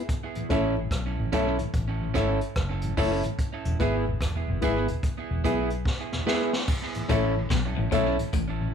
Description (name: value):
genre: roots reggae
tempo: 73 BPM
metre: 4/4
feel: swing 63% on 16ths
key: A major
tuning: A4 = 440 Hz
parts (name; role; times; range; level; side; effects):
- mellow tonewheel organ; accompaniment; 0.0-8.7 s; E2 to E4; -34 LUFS; left 1 dB; chorus vibrato, slow rotary speaker
- jazz brush drum kit; drums; 0.1-8.6 s; crash cymbal, hi-hat, kick drum, rim click, snare drum; -30 LUFS; equal; tape echo
- electric guitar at the edge of break-up; accompaniment; 0.5-8.2 s; B3 to A4; -31 LUFS; right 8 dB; tape echo
- dark grand piano; stabs; 0.5-8.1 s; E4 to E5; -29 LUFS; left 4 dB; none
- vintage muted fingered electric bass; bass; 0.5-8.7 s; E1 to B1; -29 LUFS; left 1 dB; none
- clean electric guitar; riff; 7.1-8.6 s; A2 to B2; -31 LUFS; left 7 dB; none
room: light reverb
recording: band playing live in one room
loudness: -24 LUFS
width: side -7 dB against mid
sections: 0.0-6.7 A section; 6.7-8.7 B section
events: drum fill 5.9-6.7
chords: 0.1 A; 3.4 E; 6.7 A